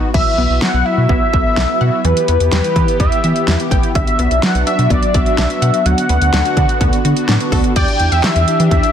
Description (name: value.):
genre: synth-pop.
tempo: 126 BPM.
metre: 4/4.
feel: straight.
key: E minor.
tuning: A4 = 440 Hz.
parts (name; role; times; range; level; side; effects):
mellow synth brass; accompaniment; 0.0-8.9 s; B3 to A4; -22 LUFS; left 2 dB; chorus.
octave-doubled lead; melody; 0.1-8.9 s; B4 to G5; -17 LUFS; equal; chorus, phaser, tape echo.
phased analog pad; sustained chords; 0.5-8.9 s; D3 to G4; -23 LUFS; right 1 dB; phaser, chorus.
wide unison pluck; arpeggios; 0.1-7.6 s; D3 to G5; -24 LUFS; left 1 dB; tape echo.
rubbery square bass; bass; 0.1-8.8 s; A1 to E3; -16 LUFS; equal; none.
pop drum kit; drums; 0.1-8.9 s; crash cymbal, handclaps, hi-hat, kick drum, snare drum; -17 LUFS; equal; none.
wide unison pluck; second line; 7.8-8.5 s; D5 to E5; -23 LUFS; equal; tape echo.
room: light reverb.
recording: dense, heavily limited modern master.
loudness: -12 LUFS.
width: side -9 dB against mid.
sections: 0.1-7.8 A section; 7.8-8.9 B section.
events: none.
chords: 0.1 Bsus4; 2.0 Em; 4.0 Bm; 5.9 D6; 7.8 Em7.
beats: | 0.14 0.62 1.10 1.57 | 2.05 2.52 3.00 3.48 | 3.95 4.43 4.91 5.38 | 5.86 6.33 6.81 7.29 | 7.76 8.24 8.71.